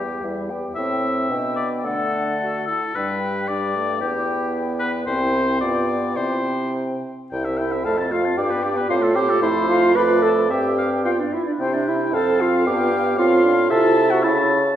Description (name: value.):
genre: quick classical-period movement for wind quintet.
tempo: 104-116 BPM.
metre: 2/4.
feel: rubato.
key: C major from 5.1 s.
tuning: A4 = 441 Hz.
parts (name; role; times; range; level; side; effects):
silver concert flute; melody; 0.0-14.6 s; C5 to B5; -28 LUFS; left 6 dB; none.
clear oboe; second line; 0.0-14.8 s; G4 to A5; -25 LUFS; left 3 dB; none.
clear French horn; accompaniment; 0.0-14.8 s; G3 to E4; -26 LUFS; equal; none.
mellow clarinet; accompaniment; 0.0-14.6 s; C4 to B4; -22 LUFS; right 3 dB; none.
clear bassoon; bass; 0.0-14.8 s; C2 to D3; -25 LUFS; equal; none.
room: wet recital hall reverb, RT60 1.4 s.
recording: heard from further back in the room.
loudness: -18 LUFS.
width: side -10 dB against mid.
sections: 0.0-7.3 A section; 7.3-14.8 B section.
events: none.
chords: 0.0 Em; 0.8 Am7; 1.3 G/B; 1.8 D; 3.0 G; 4.0 Em; 5.1 C; 5.6 G7; 6.2 C; 7.8 F; 8.4 G; 8.9 F/A; 9.4 F; 10.0 Dm/F; 10.5 C/G; 11.0 G; 11.6 C; 12.1 F; 12.7 G; 13.2 F/A; 13.7 Am/C; 14.2 A/C#.